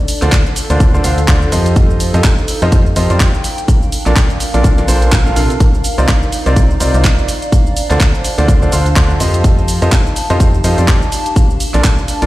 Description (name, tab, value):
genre	piano house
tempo	125 BPM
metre	4/4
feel	swing 58% on 16ths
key	unclear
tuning	A4 = 440 Hz
part	warbly tape-like pad	texture	0.0-12.3 s	D4 to Bb5	-22 LUFS	right 1 dB	chorus, built-in reverb, sidechain pumping
part	house drum kit	drums	0.1-12.3 s	handclaps, hi-hat, shaker	-20 LUFS	right 1 dB	none
part	clear concert grand piano	riff	0.2-12.3 s	Bb2 to F5	-18 LUFS	right 1 dB	sidechain pumping, tape echo
part	organ-like FM bass	bass	0.2-12.3 s	Bb1 to F2	-14 LUFS	equal	sidechain pumping
part	electronic kick drum	drums	0.3-12.0 s	none	-11 LUFS	equal	none
room	digital ambience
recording	played on a big sound system in a bare room, stone room reverb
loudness	-10 LUFS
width	side -17 dB against mid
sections	0.0-12.3 A section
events	none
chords	0.0 Dm7; 1.8 F9; 3.4 Bbmaj7; 5.6 Cm11; 7.3 Dm7; 9.4 F9; 11.1 Bbmaj7